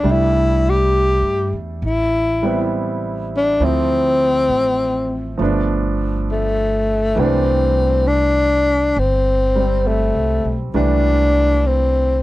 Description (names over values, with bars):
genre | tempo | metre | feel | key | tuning
jazz ballad | 67 BPM | 4/4 | swing 68% on 8ths | C major | A4 = 439 Hz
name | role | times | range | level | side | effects
breathy tenor saxophone | melody | 0.0-12.2 s | A3 to G4 | -17 LUFS | left 2 dB | none
clear grand piano | accompaniment | 0.0-12.2 s | E3 to E4 | -22 LUFS | right 3 dB | none
upright bass | bass | 0.0-12.2 s | G1 to G2 | -20 LUFS | equal | none
room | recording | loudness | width
little or no reverb | dry, close 1970s-style studio recording | -15 LUFS | side -17 dB against mid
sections
0.0-12.2 A section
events
none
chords
0.0 C6; 1.8 Am9; 3.6 Dm7; 5.4 G9; 7.2 C69